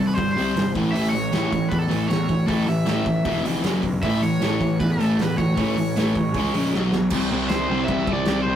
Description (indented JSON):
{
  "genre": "punk rock",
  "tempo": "156 BPM",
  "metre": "4/4",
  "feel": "straight",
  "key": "unclear",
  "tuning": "A4 = 440 Hz",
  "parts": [
    { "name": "cranked stack guitar", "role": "melody", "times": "0.0-8.6 s", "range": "A4 to E5", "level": "-27 LUFS", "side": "right 1 dB", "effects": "overdrive" },
    { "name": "distorted electric guitar", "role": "riff", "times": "0.0-8.6 s", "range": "E2 to C#4", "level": "-26 LUFS", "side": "right 6 dB", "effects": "distortion" },
    { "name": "sludgy distorted guitar", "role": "riff", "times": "0.0-8.6 s", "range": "E2 to C#4", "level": "-23 LUFS", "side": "left 4 dB", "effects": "overdrive" },
    { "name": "fuzz picked electric bass", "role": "bass", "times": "0.0-8.6 s", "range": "E1 to E2", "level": "-27 LUFS", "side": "right 1 dB", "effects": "overdrive" },
    { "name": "big rock drum kit", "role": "drums", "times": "0.2-8.4 s", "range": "crash cymbal, hi-hat, kick drum, snare drum", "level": "-28 LUFS", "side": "equal", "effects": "none" }
  ],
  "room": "moderate small room reverb, RT60 0.6 s",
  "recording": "rough rehearsal-room recording, warm saturation",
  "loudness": "-19 LUFS",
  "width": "side -10 dB against mid",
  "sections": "0.0-7.1 A section; 7.1-8.6 B section",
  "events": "drum fill 6.7-7.1",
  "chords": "0.0 C5; 0.7 A5; 0.9 A; 3.3 E5; 3.6 F#5; 4.0 A; 6.3 C#5; 6.7 B5; 7.1 C5",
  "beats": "0.17 0.55 | 0.94 1.32 1.71 2.10 | 2.48 2.87 3.25 3.64 | 4.03 4.41 4.80 5.18 | 5.57 5.96 6.34 6.73 | 7.11 7.50 7.88 8.27"
}